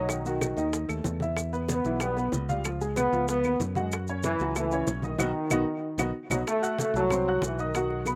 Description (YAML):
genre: latin, salsa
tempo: 188 BPM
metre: 4/4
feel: straight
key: unclear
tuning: A4 = 440 Hz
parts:
  - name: mellow trombone section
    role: melody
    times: 0.0-8.0 s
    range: D#3 to B3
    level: -31 LUFS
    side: equal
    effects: slapback echo
  - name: clear upright piano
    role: accompaniment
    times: 0.0-8.2 s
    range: D#3 to F#6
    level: -34 LUFS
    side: equal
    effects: slapback echo
  - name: modern bright fingered electric bass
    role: bass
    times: 0.0-8.2 s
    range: B1 to F#2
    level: -35 LUFS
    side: equal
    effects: none
  - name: bongos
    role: percussion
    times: 0.1-8.2 s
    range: none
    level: -40 LUFS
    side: equal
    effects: slapback echo
  - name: claves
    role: percussion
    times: 0.1-8.2 s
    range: none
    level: -37 LUFS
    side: equal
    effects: none
  - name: congas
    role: percussion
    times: 0.1-8.2 s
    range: none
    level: -39 LUFS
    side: equal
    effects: none
  - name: maracas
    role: percussion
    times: 0.1-8.2 s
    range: none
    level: -42 LUFS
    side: equal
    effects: none
room: little or no reverb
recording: recorded outdoors, with no room sound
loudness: -28 LUFS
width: mono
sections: 0.0-6.5 A section; 6.5-8.2 B section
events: band accent 5.2-6.5; drum fill 5.5-6.5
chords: 0.1 B7; 1.4 Em; 2.6 C#7; 3.9 F#m7; 5.2 B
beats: | 0.09 0.41 0.73 1.05 | 1.37 1.69 2.01 2.33 | 2.65 2.97 3.29 3.60 | 3.92 4.24 4.56 4.88 | 5.20 5.52 5.84 6.15 | 6.47 6.79 7.11 7.43 | 7.75 8.06